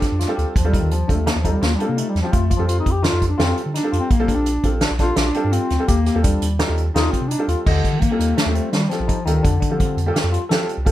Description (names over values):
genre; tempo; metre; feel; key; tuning
progressive instrumental, band music in an uneven meter; 169 BPM; 5/4; straight; Eb lydian; A4 = 442 Hz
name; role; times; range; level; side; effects
mellow bass clarinet; melody; 0.0-10.1 s; D3 to G4; -22 LUFS; left 2 dB; none
warm baby grand piano; accompaniment; 0.0-10.9 s; G3 to A4; -26 LUFS; right 2 dB; none
tine electric piano; arpeggios; 0.0-10.9 s; C4 to Eb5; -28 LUFS; left 3 dB; none
unplugged drum kit; drums; 0.0-10.9 s; crash cymbal, hi-hat, kick drum, snare drum; -21 LUFS; equal; none
pure sine sub bass; bass; 0.1-10.9 s; Bb1 to F3; -21 LUFS; equal; none
room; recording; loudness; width
light reverb; none; -16 LUFS; side -14 dB against mid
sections
0.0-7.7 A section; 7.7-10.9 B section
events
bass clarinet solo 0.0-7.7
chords
0.0 G7(no3); 0.6 Ebmaj9; 2.3 F9; 4.1 Bb6; 5.9 Eb; 7.7 Ebmaj7; 9.4 F6